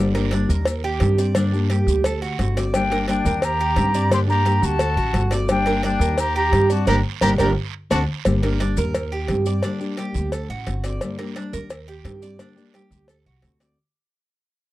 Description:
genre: latin, Cuban son and guajira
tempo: 174 BPM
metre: 4/4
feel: straight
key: G harmonic minor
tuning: A4 = 440 Hz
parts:
  - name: nylon-string guitar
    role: accompaniment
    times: 0.0-13.8 s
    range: D3 to G4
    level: -25 LUFS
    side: left 3 dB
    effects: none
  - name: Cuban tres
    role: arpeggios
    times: 0.0-13.8 s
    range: D4 to D5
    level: -26 LUFS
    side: right 4 dB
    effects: none
  - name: upright bass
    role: bass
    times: 0.0-13.7 s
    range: G1 to G2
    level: -22 LUFS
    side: equal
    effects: none
  - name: cowbell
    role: percussion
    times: 0.1-13.8 s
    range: none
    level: -26 LUFS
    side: left 1 dB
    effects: none
  - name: maracas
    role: percussion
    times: 0.2-13.8 s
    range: none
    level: -40 LUFS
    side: left 14 dB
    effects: none
  - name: guiro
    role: percussion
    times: 0.3-13.8 s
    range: none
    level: -38 LUFS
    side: right 15 dB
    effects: none
  - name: concert flute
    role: melody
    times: 2.7-8.0 s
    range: G5 to C6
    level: -23 LUFS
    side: equal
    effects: none
  - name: bright trumpet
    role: second line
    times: 2.7-8.0 s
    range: D4 to G4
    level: -30 LUFS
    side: left 10 dB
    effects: none
room: little or no reverb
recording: dry, close 1970s-style studio recording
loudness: -18 LUFS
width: side -16 dB against mid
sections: 0.0-8.3 A section; 8.3-13.8 B section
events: band accent 6.9-8.3; fade-out 8.3-13.8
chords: 0.0 Gm; 0.7 Eb6; 1.4 Gm; 2.0 D7; 2.7 Gm; 3.4 Eb6; 4.1 Gm; 4.8 D7; 5.5 Gm; 6.2 Eb6; 6.9 Gm; 7.6 D7; 8.3 Gm; 8.9 Eb6; 9.6 Gm; 10.3 D7; 11.0 Gm; 11.7 Eb6; 12.4 Gm; 13.1 D7

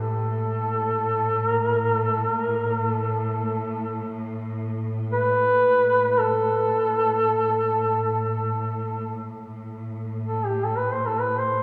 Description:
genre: caucasian folk, Caucasian lament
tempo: free time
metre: none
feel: none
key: unclear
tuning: A4 = 443 Hz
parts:
  - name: warm duduk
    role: melody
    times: 0.0-11.6 s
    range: G4 to C5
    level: -24 LUFS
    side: equal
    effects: none
  - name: rich symphonic string section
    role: drone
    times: 0.0-11.6 s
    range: A2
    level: -31 LUFS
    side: equal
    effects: none
room: wet cathedral reverb, RT60 4.4 s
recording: small room reverb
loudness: -24 LUFS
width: mono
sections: 0.0-9.4 A section; 9.4-11.6 A section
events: none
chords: none

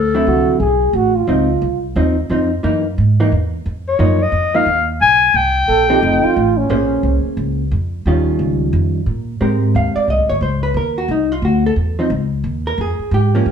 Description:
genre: jazz, small-group swing and bop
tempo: 178 BPM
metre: 4/4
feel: swing 64% on 8ths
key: Ab major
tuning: A4 = 439 Hz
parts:
  - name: breathy clarinet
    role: melody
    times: 0.0-0.6, 3.9-6.6 s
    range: A4 to Ab5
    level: -14 LUFS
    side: left 4 dB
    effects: none
  - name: upright bass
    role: bass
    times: 0.0-13.5 s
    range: F1 to Bb2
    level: -18 LUFS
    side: equal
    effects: none
  - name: vintage hollow-body jazz guitar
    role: accompaniment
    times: 0.1-13.5 s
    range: D3 to F5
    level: -18 LUFS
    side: right 1 dB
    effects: none
  - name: warm trombone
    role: second line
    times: 0.3-1.8, 5.7-7.2 s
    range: Db4 to A4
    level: -16 LUFS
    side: right 4 dB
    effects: none
room: wet large studio reverb, RT60 1.0 s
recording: band playing live in one room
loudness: -14 LUFS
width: side -7 dB against mid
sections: 0.0-9.4 A section; 9.4-13.5 B section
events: none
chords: 0.0 D9; 1.3 Dbmaj9; 2.6 Gb13; 4.0 Bmaj7#11; 5.3 Cm7; 6.0 F7; 6.7 Bbm9; 8.0 Eb9; 9.4 Abmaj9; 10.8 Cm7b5; 11.4 Dsus2; 12.1 Dbadd9

